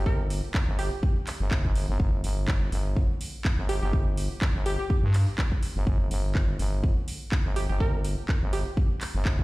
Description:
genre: bass house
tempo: 124 BPM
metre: 4/4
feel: swing 55% on 16ths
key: G minor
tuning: A4 = 440 Hz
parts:
  - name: glassy wavetable pluck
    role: melody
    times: 0.0-9.2 s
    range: G4 to Bb4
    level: -35 LUFS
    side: right 2 dB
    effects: chorus, digital delay
  - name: growling FM bass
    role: bass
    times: 0.0-9.4 s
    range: G1 to G2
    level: -26 LUFS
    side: equal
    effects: tube saturation, sidechain pumping
  - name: electronic kick drum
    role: drums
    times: 0.1-9.4 s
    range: none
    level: -25 LUFS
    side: equal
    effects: none
  - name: house drum kit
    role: drums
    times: 0.3-9.4 s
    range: handclaps, hi-hat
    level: -36 LUFS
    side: equal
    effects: none
room: little or no reverb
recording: played on a big sound system in a bare room, stone room reverb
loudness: -24 LUFS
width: side -20 dB against mid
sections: 0.0-9.4 A section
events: none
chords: none

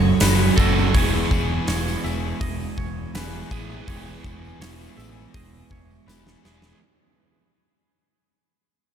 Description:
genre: rock, shoegaze and dream pop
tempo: 82 BPM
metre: 4/4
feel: straight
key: E major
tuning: A4 = 442 Hz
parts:
  - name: twangy electric guitar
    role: arpeggios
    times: 0.0-7.0 s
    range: G#4 to E5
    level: -33 LUFS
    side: right 8 dB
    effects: lush chorus, digital delay
  - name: crunchy overdriven guitar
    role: riff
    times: 0.0-6.8 s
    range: E3 to A4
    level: -26 LUFS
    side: right 12 dB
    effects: reverse reverb
  - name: overdriven semi-hollow guitar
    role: riff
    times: 0.0-6.8 s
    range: E3 to A4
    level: -29 LUFS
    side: left 12 dB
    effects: wide subtle chorus
  - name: growling picked electric bass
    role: bass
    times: 0.0-6.7 s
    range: E1 to A1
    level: -25 LUFS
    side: equal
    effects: overdrive
  - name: huge arena drum kit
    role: drums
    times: 0.2-6.8 s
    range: hi-hat, kick drum, snare drum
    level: -25 LUFS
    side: equal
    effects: none
  - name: tambourine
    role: percussion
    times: 0.2-6.7 s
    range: none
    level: -37 LUFS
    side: left 10 dB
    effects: none
room: studio ambience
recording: none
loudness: -19 LUFS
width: side -8 dB against mid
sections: 0.0-6.8 A section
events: fade-out 0.0-6.8; drum fill 6.1-6.8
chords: 0.0 F#m; 1.0 E6

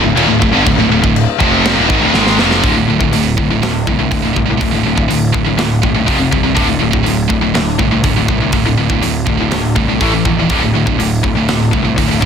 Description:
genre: heavy metal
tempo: 122 BPM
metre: 4/4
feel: straight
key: D phrygian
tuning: A4 = 444 Hz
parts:
  - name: heavy high-gain guitar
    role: riff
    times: 0.0-2.6 s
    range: D2 to G#3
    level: -16 LUFS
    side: equal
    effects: distortion
  - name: scooped high-gain guitar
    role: riff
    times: 0.0-12.3 s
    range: D2 to A3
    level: -15 LUFS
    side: right 10 dB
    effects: distortion
  - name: tight distorted guitar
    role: riff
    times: 0.0-12.3 s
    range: D2 to A3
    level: -16 LUFS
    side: left 10 dB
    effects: distortion
  - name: fuzz picked electric bass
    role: bass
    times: 0.0-12.3 s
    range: D1 to C2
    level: -18 LUFS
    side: equal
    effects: overdrive
  - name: tight metal drum kit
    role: drums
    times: 0.2-12.3 s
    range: china cymbal, hi-hat, kick drum, snare drum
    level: -18 LUFS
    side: equal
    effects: none
room: light reverb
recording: dense, heavily limited modern master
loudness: -11 LUFS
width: side -7 dB against mid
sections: 0.0-2.6 A section; 2.6-12.3 B section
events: drum fill 2.1-2.6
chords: 0.0 Dm; 2.6 D5; 6.1 F5; 6.6 D5; 10.0 A5; 10.5 D5

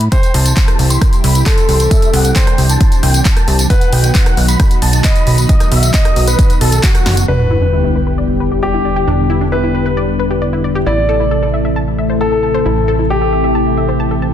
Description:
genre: uplifting trance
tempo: 134 BPM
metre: 4/4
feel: straight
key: E minor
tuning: A4 = 440 Hz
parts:
  - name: big supersaw lead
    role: melody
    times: 0.0-7.2 s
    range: F#4 to C6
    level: -21 LUFS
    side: equal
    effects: cassette tape, sidechain pumping, low-pass filter, ping-pong delay
  - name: plucky analog bass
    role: bass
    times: 0.0-14.3 s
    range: E1 to C2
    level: -15 LUFS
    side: equal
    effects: sidechain pumping
  - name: punchy analog drum machine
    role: drums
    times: 0.0-14.3 s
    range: handclaps, hi-hat, rim click, snare drum, tambourine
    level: -19 LUFS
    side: equal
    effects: low-pass filter on hats, low-pass filter on snare, low-pass filter on perc, low-pass filter on room
  - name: warm concert grand piano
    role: second line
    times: 0.1-14.3 s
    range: G4 to D#5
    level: -19 LUFS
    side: left 1 dB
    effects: ping-pong delay
  - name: analog string pad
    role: sustained chords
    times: 0.1-14.3 s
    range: B2 to A4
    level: -18 LUFS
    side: equal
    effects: ensemble chorus, sidechain pumping
  - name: electronic kick drum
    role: drums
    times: 0.1-6.9 s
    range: none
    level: -12 LUFS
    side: equal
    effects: none
  - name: analog pluck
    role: arpeggios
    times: 7.3-14.3 s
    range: D4 to A5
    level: -22 LUFS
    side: left 2 dB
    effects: chorus, sidechain pumping, ping-pong delay
  - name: sub drop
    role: sound effects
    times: 7.3-9.1 s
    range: none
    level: -18 LUFS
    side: equal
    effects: none
room: light reverb, digital ambience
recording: dense, heavily limited modern master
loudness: -10 LUFS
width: side -10 dB against mid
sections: 0.0-7.3 A section; 7.3-14.3 B section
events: drum fill 7.1; impact 7.3-9.1; filter sweep on synth pluck 7.3-14.3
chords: 0.1 C; 3.7 B; 7.3 Em7; 10.9 Am

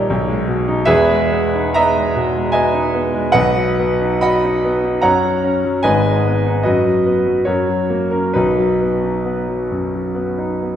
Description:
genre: classical, romantic character piece for solo piano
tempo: 72 BPM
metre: 3/4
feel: uneven beats, rubato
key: B major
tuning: A4 = 440 Hz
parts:
  - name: clear concert grand piano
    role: solo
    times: 0.0-10.8 s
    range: E1 to B5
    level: -14 LUFS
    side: equal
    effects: none
room: wet scoring stage reverb, RT60 1.7 s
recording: heard from further back in the room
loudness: -14 LUFS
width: side -10 dB against mid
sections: 0.0-10.8 A section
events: none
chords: 0.1 G#m/B; 0.9 Emaj7; 3.4 B; 5.0 F#; 5.8 G#m; 6.7 B/F#; 7.5 F#; 8.4 B

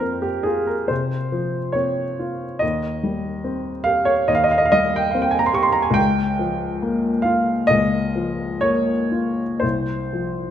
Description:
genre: classical, romantic nocturne for solo piano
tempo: 59-73 BPM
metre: 4/4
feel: rubato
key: unclear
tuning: A4 = 440 Hz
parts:
  - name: warm baby grand piano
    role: solo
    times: 0.0-10.5 s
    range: C2 to Db6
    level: -18 LUFS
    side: equal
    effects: none
room: moderate recital hall reverb, RT60 1.3 s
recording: nothing above 10.4 kHz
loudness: -18 LUFS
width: side -10 dB against mid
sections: 0.0-10.5 A section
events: none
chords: 0.0 F5; 2.6 Cm/Eb; 6.0 Bbm/Db; 9.6 F5/C

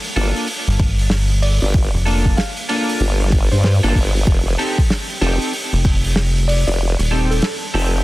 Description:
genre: glitch hop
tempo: 95 BPM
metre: 4/4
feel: swing 63% on 16ths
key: G minor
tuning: A4 = 439 Hz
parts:
  - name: warm soul drum kit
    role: drums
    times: 0.0-8.0 s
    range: hi-hat, rim click, snare drum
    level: -23 LUFS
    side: right 1 dB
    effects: none
  - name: semi-hollow electric guitar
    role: stabs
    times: 0.2-8.0 s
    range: Bb3 to A4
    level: -24 LUFS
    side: equal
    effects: analog chorus, sidechain pumping, dub echo
  - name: formant-sweep wobble bass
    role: bass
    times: 0.2-8.0 s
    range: F1 to G2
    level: -16 LUFS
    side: equal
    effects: chorus, tube saturation
  - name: rubbery square bass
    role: bass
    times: 0.7-7.4 s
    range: Eb1 to G1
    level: -16 LUFS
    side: equal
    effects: tube saturation
  - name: electronic kick drum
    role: drums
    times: 0.8-6.0 s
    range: none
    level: -17 LUFS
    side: equal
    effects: none
  - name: woody wave-folded pluck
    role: melody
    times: 1.4-7.6 s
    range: A4 to F5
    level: -28 LUFS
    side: equal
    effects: lush chorus, dub echo
room: small room ambience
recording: dense, heavily limited modern master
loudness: -15 LUFS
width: side -18 dB against mid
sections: 0.0-8.0 A section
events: kick drops out 6.8-8.0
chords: 0.0 Gm7; 4.3 F7

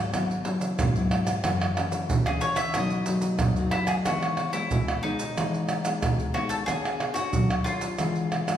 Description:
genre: samba and choro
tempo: 92 BPM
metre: 4/4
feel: straight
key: E major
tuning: A4 = 440 Hz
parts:
  - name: nylon-string guitar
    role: accompaniment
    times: 0.0-8.6 s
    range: F#2 to C#5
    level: -28 LUFS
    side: left 2 dB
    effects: none
  - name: maracas, surdo, pandeiro and tamborim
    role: percussion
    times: 0.1-8.6 s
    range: none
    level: -26 LUFS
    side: right 2 dB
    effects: none
  - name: bowl-back mandolin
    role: melody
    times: 2.3-8.6 s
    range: D#4 to E5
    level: -31 LUFS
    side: left 2 dB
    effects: none
room: wet recital hall reverb, RT60 1.5 s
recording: recorded in a church or concert hall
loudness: -24 LUFS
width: side -10 dB against mid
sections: 0.0-4.1 A section; 4.1-8.6 B section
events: mandolin solo 0.0-4.1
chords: 0.0 C#m7; 1.4 F#m7; 2.7 B7; 4.1 Emaj7; 6.7 Bm9; 8.0 E7b9

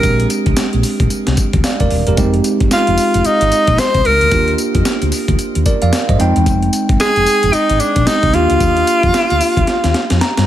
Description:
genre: R&B, new jack swing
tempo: 112 BPM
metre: 4/4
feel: swing 60% on 16ths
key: F dorian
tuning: A4 = 440 Hz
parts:
  - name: clear tenor saxophone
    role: melody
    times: 0.0-10.2 s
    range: D4 to C5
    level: -15 LUFS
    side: equal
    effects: tape echo
  - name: bell-like tine electric piano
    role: accompaniment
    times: 0.0-10.5 s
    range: Ab3 to Bb5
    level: -18 LUFS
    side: right 3 dB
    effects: none
  - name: woody fretless electric bass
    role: bass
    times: 0.0-10.5 s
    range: Eb1 to G2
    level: -16 LUFS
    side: equal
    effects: ensemble chorus
  - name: breakbeat sampler-style drum kit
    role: drums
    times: 0.0-10.5 s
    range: hi-hat, kick drum, snare drum, tambourine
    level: -18 LUFS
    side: equal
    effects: none
room: light reverb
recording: none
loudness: -11 LUFS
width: side -12 dB against mid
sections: 0.0-10.5 A section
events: drum fill 9.7-10.5; tine electric piano fill 9.9-10.5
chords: 0.0 Bb13; 2.2 Fm7; 4.3 Ebmaj7; 6.2 Fm7; 8.3 Ebmaj9

